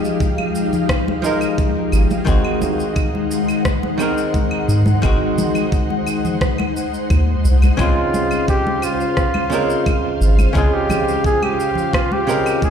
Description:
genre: sunset chillout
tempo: 87 BPM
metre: 4/4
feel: straight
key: unclear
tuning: A4 = 439 Hz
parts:
  - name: archtop guitar, miked and amplified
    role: accompaniment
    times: 0.0-12.7 s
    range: Db3 to Bb4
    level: -22 LUFS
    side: moving between left 3 dB and right 3 dB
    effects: auto-pan, ping-pong delay
  - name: ethereal airy pad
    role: sustained chords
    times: 0.0-12.7 s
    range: Ab3 to Gb5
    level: -22 LUFS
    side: left 2 dB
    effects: ensemble chorus, built-in reverb
  - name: electronic shaker, claves and rim click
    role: drums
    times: 0.0-12.7 s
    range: none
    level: -27 LUFS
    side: equal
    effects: none
  - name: electronic kick drum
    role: drums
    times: 0.2-12.7 s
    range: none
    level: -19 LUFS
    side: equal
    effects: none
  - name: congas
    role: percussion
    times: 0.4-12.7 s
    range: none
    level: -27 LUFS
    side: equal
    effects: none
  - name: round analog bass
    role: bass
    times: 1.9-10.7 s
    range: Ab1 to Ab2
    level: -14 LUFS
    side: equal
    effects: none
  - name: warm flugelhorn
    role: melody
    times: 7.8-12.7 s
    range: F4 to Ab4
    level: -20 LUFS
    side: equal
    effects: ping-pong delay
room: light reverb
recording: played on a big sound system in a bare room, large studio reverb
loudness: -15 LUFS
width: side -8 dB against mid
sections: 0.0-12.7 A section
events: none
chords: 0.0 Fm9; 2.3 Ab7; 7.8 Dbmaj7

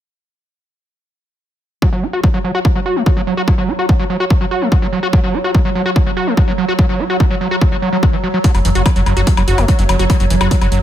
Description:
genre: psychedelic trance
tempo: 145 BPM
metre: 4/4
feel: straight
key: unclear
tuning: A4 = 440 Hz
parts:
  - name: evolving wavetable pad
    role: sustained chords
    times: 2.1-10.8 s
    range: F#3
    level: -22 LUFS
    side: right 2 dB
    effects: chorus, built-in reverb, sidechain pumping
  - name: screaming distorted acid line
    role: riff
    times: 1.8-10.8 s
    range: E3 to F#4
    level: -18 LUFS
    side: equal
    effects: distortion, chorus, auto-pan, sidechain pumping, ping-pong delay
  - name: electronic kick drum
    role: drums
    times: 1.8-10.6 s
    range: none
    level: -13 LUFS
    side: equal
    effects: overdrive, studio reverb
  - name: electronic hi-hat and woodblock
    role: drums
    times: 8.4-10.8 s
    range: none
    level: -22 LUFS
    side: left 4 dB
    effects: overdrive, low-pass filter on hats, studio reverb, low-pass filter on perc
  - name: round analog bass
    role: bass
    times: 8.5-10.8 s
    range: F#1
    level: -15 LUFS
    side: equal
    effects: none
room: little or no reverb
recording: none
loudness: -12 LUFS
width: side -11 dB against mid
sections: 1.8-10.8 A section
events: filter sweep on acid bass 1.8-10.8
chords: none

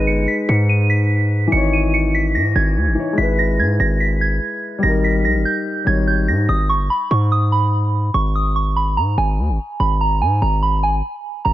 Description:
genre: hip hop, drill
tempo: 145 BPM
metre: 4/4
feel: half-time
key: G# harmonic minor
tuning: A4 = 441 Hz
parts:
  - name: soft synth bell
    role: melody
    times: 0.0-11.5 s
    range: G#5 to D#7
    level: -20 LUFS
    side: right 3 dB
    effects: chorus, low-pass filter
  - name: dark concert grand piano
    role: accompaniment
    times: 0.0-6.5 s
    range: E3 to C#5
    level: -21 LUFS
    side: left 2 dB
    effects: low-pass filter
  - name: hard-hitting 808-style bass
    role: bass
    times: 0.0-11.5 s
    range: G1 to G#2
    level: -17 LUFS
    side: equal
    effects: none
room: small room reverb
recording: none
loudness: -15 LUFS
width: side -14 dB against mid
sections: 0.0-6.5 A section; 6.5-11.5 B section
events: none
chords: 0.0 G#m; 1.5 C#madd9/G#; 3.2 E/G#; 4.8 D#/G#; 6.5 G#m; 8.1 G#sus4; 9.8 G#madd9

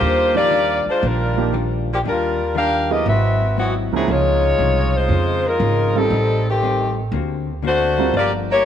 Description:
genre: jazz, big band swing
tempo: 118 BPM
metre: 4/4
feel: swing 68% on 8ths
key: unclear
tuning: A4 = 440 Hz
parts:
  - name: clear saxophone section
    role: melody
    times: 0.0-8.7 s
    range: Eb3 to F5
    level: -18 LUFS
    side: left 2 dB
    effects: slapback echo
  - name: vintage hollow-body jazz guitar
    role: accompaniment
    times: 0.0-8.5 s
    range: G2 to F#4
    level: -27 LUFS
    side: left 10 dB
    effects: none
  - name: upright bass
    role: bass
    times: 0.0-8.7 s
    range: G1 to F2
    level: -21 LUFS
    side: right 2 dB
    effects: none
  - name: warm baby grand piano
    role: accompaniment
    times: 0.3-8.1 s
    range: Db2 to Bb4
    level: -25 LUFS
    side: right 14 dB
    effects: none
room: moderate plate reverb, RT60 3.3 s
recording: 1960s-style stereo with parts hard left and right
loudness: -16 LUFS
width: side -9 dB against mid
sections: 0.0-4.1 A section; 4.1-8.7 B section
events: none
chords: 0.0 Ebmaj9; 3.1 Ab7alt; 4.1 Dbmaj9; 6.1 Am7b5; 7.1 D7b13; 8.1 Gm7

